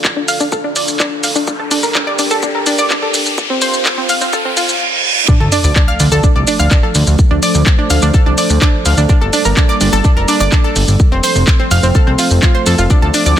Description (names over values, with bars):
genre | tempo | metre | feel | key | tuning
melodic techno | 126 BPM | 4/4 | straight | D minor | A4 = 441 Hz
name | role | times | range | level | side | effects
dark analog pad | sustained chords | 0.0-13.4 s | F3 to G5 | -21 LUFS | equal | chorus, sidechain pumping
electronic kick drum | drums | 0.0-13.0 s | none | -11 LUFS | equal | high-pass filter on kick
punchy analog drum machine | drums | 0.0-13.4 s | handclaps, hi-hat, shaker | -17 LUFS | equal | none
riser, reverse cymbal and sub drop | sound effects | 1.0-7.2 s | none | -19 LUFS | right 2 dB | none
analog pluck | arpeggios | 0.2-13.3 s | C4 to F5 | -16 LUFS | right 1 dB | chorus, sidechain pumping, ping-pong delay
fat analog bass | bass | 5.4-13.3 s | F1 to F2 | -13 LUFS | equal | sidechain pumping
room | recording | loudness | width
light reverb | dense, heavily limited modern master, high-pass filter | -10 LUFS | side -10 dB against mid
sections
0.0-5.3 A section; 5.3-13.4 B section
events
build-up 0.0-5.3; riser 1.0-4.8; filter sweep on analog synth pad 0.0-5.3; reverse cymbal 4.3-5.3; drop 5.3-13.4; impact 5.3-7.2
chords
0.0 Dm; 1.5 Gmadd9; 3.4 F; 5.3 Dm; 9.1 Gmadd9; 11.0 F